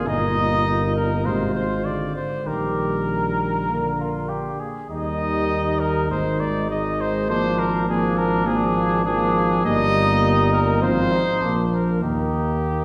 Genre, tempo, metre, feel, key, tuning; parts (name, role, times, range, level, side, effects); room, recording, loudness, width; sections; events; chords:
classical, brass quintet; 100 BPM; 4/4; rubato; Eb major; A4 = 440 Hz
warm trumpet; melody; 0.0-12.8 s; G4 to Eb5; -27 LUFS; equal
mellow trumpet; second line; 0.0-12.8 s; D4 to Bb4; -30 LUFS; equal
mellow French horn; accompaniment; 0.0-12.8 s; G3 to C4; -29 LUFS; equal
mellow trombone; accompaniment; 0.0-12.8 s; Bb2 to G3; -29 LUFS; equal
dark bass trombone; bass; 0.0-12.8 s; G1 to Eb2; -28 LUFS; equal
wet scoring stage reverb, RT60 1.6 s; heard from further back in the room; -21 LUFS; mono
0.0-12.8 A section
0.1 Eb/G; 1.3 Fm/Ab; 2.5 Eb/Bb; 3.7 Bb; 4.9 Eb; 6.1 Ab5; 7.3 Bb7/Ab; 9.7 Eb/G; 10.8 Fm/Ab; 11.4 Bb; 12.0 Eb